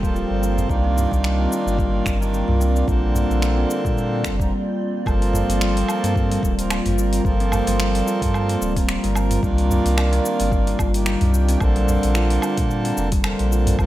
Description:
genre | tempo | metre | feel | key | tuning
organic downtempo | 110 BPM | 4/4 | swing 56% on 16ths | G minor | A4 = 440 Hz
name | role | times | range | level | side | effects
hand-pumped harmonium | accompaniment | 0.0-13.9 s | D3 to Bb4 | -25 LUFS | right 2 dB | sidechain pumping, digital delay
warbly tape-like pad | sustained chords | 0.0-13.9 s | G3 to D5 | -28 LUFS | equal | chorus, built-in reverb, vintage 12-bit sampler grit, sidechain pumping
kalimba | arpeggios | 0.0-13.9 s | G3 to G4 | -25 LUFS | left 1 dB | digital delay
warm sub bass | bass | 0.0-13.9 s | D1 to Bb2 | -21 LUFS | equal | none
afro-pop drum kit | drums | 0.0-13.9 s | finger snaps, hi-hat, shaker, woodblock | -29 LUFS | equal | studio reverb
electronic kick drum | drums | 0.0-13.9 s | none | -23 LUFS | equal | studio reverb
twinkling granular texture | texture | 0.0-4.5 s | G4 to G5 | -41 LUFS | right 1 dB | none
udu | percussion | 0.6-13.8 s | none | -27 LUFS | right 1 dB | none
room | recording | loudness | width
light reverb | none | -18 LUFS | side -14 dB against mid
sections
0.0-5.1 A section; 5.1-13.9 B section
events
break 4.5-5.1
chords
0.0 Gm11; 0.7 Cm11; 2.9 Bbmaj9; 5.1 Gm11; 9.4 Cm11; 11.6 Bbmaj9

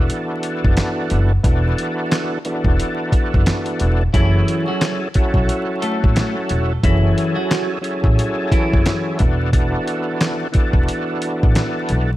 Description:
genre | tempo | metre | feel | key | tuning
hip hop, boom-bap hip-hop | 89 BPM | 4/4 | swing 59% on 16ths | unclear | A4 = 440 Hz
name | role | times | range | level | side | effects
overdriven tonewheel organ | accompaniment | 0.0-12.1 s | E3 to A4 | -21 LUFS | equal | chorus vibrato, slow rotary speaker, cassette tape
upright bass | bass | 0.0-12.2 s | E1 to B1 | -18 LUFS | equal | none
dusty soul sampler-style drum kit | drums | 0.1-12.1 s | handclaps, hi-hat, kick drum, snare drum | -18 LUFS | equal | none
semi-hollow electric guitar | melody | 4.1-9.5 s | E3 to A4 | -24 LUFS | equal | phaser, ping-pong delay
room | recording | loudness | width
little or no reverb | vinyl crackle | -16 LUFS | side -15 dB against mid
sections
0.0-12.2 A section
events
none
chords
0.0 E7sus4; 4.1 F#m9; 9.2 E7sus4

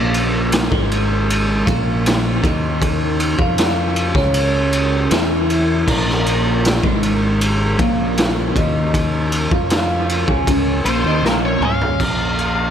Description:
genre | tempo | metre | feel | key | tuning
psychedelic rock | 78 BPM | 4/4 | straight | Bb minor | A4 = 439 Hz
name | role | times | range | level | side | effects
overdriven combo organ | sustained chords | 0.0-12.7 s | Db3 to C5 | -28 LUFS | right 4 dB | wide subtle chorus
electric guitar at the edge of break-up | riff | 0.0-12.7 s | Ab2 to F4 | -20 LUFS | equal | phaser, double-tracked left and right, analog delay
fuzz fingered electric bass | bass | 0.0-12.7 s | Ab1 to F2 | -21 LUFS | equal | overdrive
raw garage drum kit | drums | 0.1-12.6 s | crash cymbal, kick drum, ride cymbal, snare drum, toms | -19 LUFS | equal | analog delay
octave-fuzz lead guitar | melody | 10.9-12.7 s | Bb4 to F5 | -21 LUFS | left 2 dB | distortion, analog delay
room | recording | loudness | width
light reverb | echo-heavy mix | -15 LUFS | side -9 dB against mid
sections
0.0-12.0 A section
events
drum fill 11.2-12.0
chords
0.0 Bbm

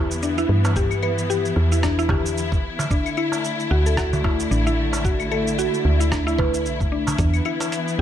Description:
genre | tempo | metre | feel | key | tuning
organic downtempo | 112 BPM | 4/4 | swing 57% on 16ths | E minor pentatonic | A4 = 442 Hz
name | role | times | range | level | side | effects
warm symphonic string section | sustained chords | 0.0-8.0 s | D3 to E4 | -26 LUFS | left 2 dB | sidechain pumping
mallet-like synth pluck | arpeggios | 0.0-8.0 s | D4 to B4 | -24 LUFS | equal | chorus, ping-pong delay
woody FM bass | bass | 0.0-8.0 s | A1 to G2 | -22 LUFS | equal | none
dusty soul sampler-style drum kit | drums | 0.1-8.0 s | cabasa, claves, hi-hat, rim click | -30 LUFS | left 1 dB | none
darbuka | percussion | 0.6-8.0 s | none | -30 LUFS | right 2 dB | none
electronic kick drum | drums | 0.8-7.3 s | none | -24 LUFS | equal | none
room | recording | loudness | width
light reverb | none | -19 LUFS | side -10 dB against mid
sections
0.0-8.0 A section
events
none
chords
0.0 Em; 2.9 D69; 7.2 E7(no3)

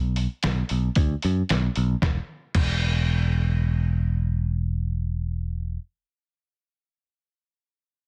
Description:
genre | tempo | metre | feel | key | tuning
hard rock | 113 BPM | 4/4 | straight | unclear | A4 = 442 Hz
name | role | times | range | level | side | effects
picked electric bass | bass | 0.0-5.8 s | E1 to F#2 | -26 LUFS | equal | none
lo-fi sampler-style drum kit | drums | 0.2-2.7 s | crash cymbal, hi-hat, kick drum, snare drum | -28 LUFS | equal | none
room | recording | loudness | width
digital ambience | dense, heavily limited modern master | -25 LUFS | mono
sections
0.0-2.0 A section; 2.0-6.3 B section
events
none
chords
none

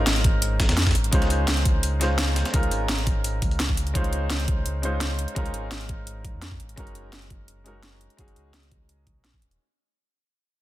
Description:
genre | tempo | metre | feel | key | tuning
liquid drum and bass | 170 BPM | 4/4 | straight | Db major | A4 = 441 Hz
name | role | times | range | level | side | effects
clear grand piano | accompaniment | 0.0-9.6 s | Ab3 to C5 | -30 LUFS | equal | tape echo
sub bass with octave | bass | 0.0-9.6 s | Eb1 to F2 | -26 LUFS | equal | tube saturation
drum and bass drum kit | drums | 0.1-9.6 s | hi-hat, snare drum | -28 LUFS | equal | overdrive
dusty soul sampler-style drum kit | drums | 0.1-3.9 s | hi-hat, snare drum | -31 LUFS | equal | high-pass filter on hats, high-pass filter on snare
electronic kick drum | drums | 0.2-9.4 s | none | -24 LUFS | equal | overdrive
room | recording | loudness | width
little or no reverb | dense, heavily limited modern master | -21 LUFS | side -15 dB against mid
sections
0.0-9.6 A section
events
fade-out 0.0-9.6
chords
0.0 Dbmaj9; 6.8 Gb69

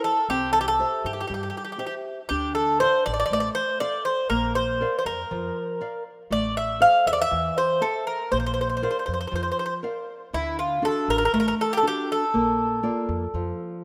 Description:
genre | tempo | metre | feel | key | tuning
greek folk | 120 BPM | 4/4 | straight | unclear | A4 = 439 Hz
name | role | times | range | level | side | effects
Greek bouzouki | melody | 0.0-13.8 s | E4 to F5 | -25 LUFS | equal | none
nylon-string guitar | accompaniment | 0.0-13.8 s | D3 to F5 | -32 LUFS | equal | none
upright bass | bass | 0.3-13.5 s | A1 to G2 | -35 LUFS | equal | none
room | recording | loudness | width
moderate lush hall reverb, RT60 2.5 s | rough home demo mix | -24 LUFS | mono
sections
0.0-13.8 A section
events
none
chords
0.3 C; 2.3 Dm; 4.3 Bb; 6.3 Am; 8.3 Bb; 10.3 D; 12.3 Bb

